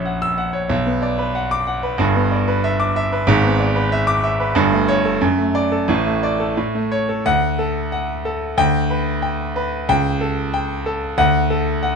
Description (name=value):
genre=classical, virtuoso piano study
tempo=93 BPM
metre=2/4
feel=rubato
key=D major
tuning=A4 = 440 Hz
part: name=bright concert grand piano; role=solo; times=0.0-12.0 s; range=G1 to E6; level=-16 LUFS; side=equal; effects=none
room=light reverb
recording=none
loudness=-16 LUFS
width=side -5 dB against mid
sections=0.0-7.3 A section; 7.3-12.0 B section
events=none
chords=0.0 F#7/A#; 0.7 Bm; 2.0 Em7/G; 3.3 E7/G#; 4.6 A7/G; 5.2 D/F#; 5.9 D5/A; 6.6 A; 7.3 D; 8.6 G/D; 9.9 A7/C#; 11.2 D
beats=0.06 | 0.70 1.35 | 2.00 2.64 | 3.28 3.92 | 4.56 5.21 | 5.89 6.58 | 7.25 7.92 | 8.58 9.23 | 9.89 10.53 | 11.17 11.82